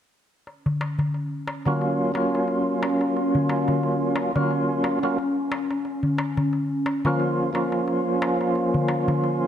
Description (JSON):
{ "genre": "trip hop", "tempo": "89 BPM", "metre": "4/4", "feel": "swing 56% on 16ths", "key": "unclear", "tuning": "A4 = 444 Hz", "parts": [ { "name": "warbly tape-like pad", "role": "sustained chords", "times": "1.2-9.5 s", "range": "Db4", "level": "-28 LUFS", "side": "left 1 dB", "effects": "chorus, built-in reverb, vintage 12-bit sampler grit" }, { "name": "darbuka", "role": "percussion", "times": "0.5-9.4 s", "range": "none", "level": "-26 LUFS", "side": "left 1 dB", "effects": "none" }, { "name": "percussive tonewheel organ", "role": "accompaniment", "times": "1.7-9.5 s", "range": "F3 to F4", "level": "-23 LUFS", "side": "right 1 dB", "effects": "slow rotary speaker, tremolo, vintage 12-bit sampler grit, tape echo" } ], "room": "moderate lush hall reverb, RT60 2.2 s", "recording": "dark, warm production", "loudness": "-21 LUFS", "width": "side -9 dB against mid", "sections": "0.5-9.5 A section", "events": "none", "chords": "0.5 Gbmaj7; 5.9 Bbm", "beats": "| 0.47 1.14 1.81 2.49 | 3.16 3.84 4.51 5.18 | 5.86 6.53 7.21 7.88 | 8.55 9.23" }